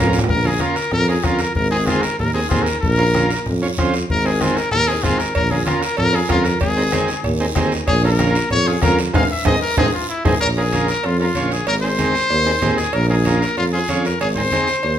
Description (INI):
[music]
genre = latin, cumbia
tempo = 190 BPM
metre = 4/4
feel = straight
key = Bb minor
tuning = A4 = 443 Hz
[part]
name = bright trumpet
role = melody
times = 0.0-15.0 s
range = E4 to F5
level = -20 LUFS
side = left 2 dB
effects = none
[part]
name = combo organ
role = accompaniment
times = 0.0-14.7 s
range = C4 to Db5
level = -23 LUFS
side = right 2 dB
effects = none
[part]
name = mellow tuba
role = bass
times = 0.0-15.0 s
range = Ab1 to F2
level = -20 LUFS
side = equal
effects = none
[part]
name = timbales and cowbell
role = percussion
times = 0.0-0.3, 5.3-15.0 s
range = none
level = -26 LUFS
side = right 5 dB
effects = none
[part]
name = congas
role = percussion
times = 0.1-15.0 s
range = none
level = -26 LUFS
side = left 1 dB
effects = none
[part]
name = guiro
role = percussion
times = 0.1-15.0 s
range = none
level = -31 LUFS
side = right 5 dB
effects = none
[part]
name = bombo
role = percussion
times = 0.3-10.3 s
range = none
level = -23 LUFS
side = left 2 dB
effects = none
[sound]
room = wet large studio reverb, RT60 0.9 s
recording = band playing live in one room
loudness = -15 LUFS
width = side -10 dB against mid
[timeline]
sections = 0.3-10.4 A section; 10.4-15.0 B section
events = drum fill 0.0, 9.8-10.4; trumpet solo 0.3-10.4; band accent 9.1-10.4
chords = 0.3 Bbm; 1.6 Ab; 2.8 Bbm; 4.1 Ab; 5.4 Bbm; 6.6 Ab; 7.9 Bbm; 9.1 Ab; 10.4 Bbm; 11.7 Ab; 12.9 Bbm; 14.2 Ab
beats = | 0.29 0.60 0.92 1.24 | 1.55 1.87 2.19 2.50 | 2.82 3.14 3.46 3.77 | 4.09 4.40 4.72 5.04 | 5.35 5.67 5.99 6.30 | 6.62 6.93 7.25 7.56 | 7.88 8.20 8.51 8.83 | 9.14 9.46 9.77 10.09 | 10.40 10.72 11.04 11.35 | 11.67 11.98 12.30 12.62 | 12.93 13.25 13.57 13.88 | 14.20 14.52 14.83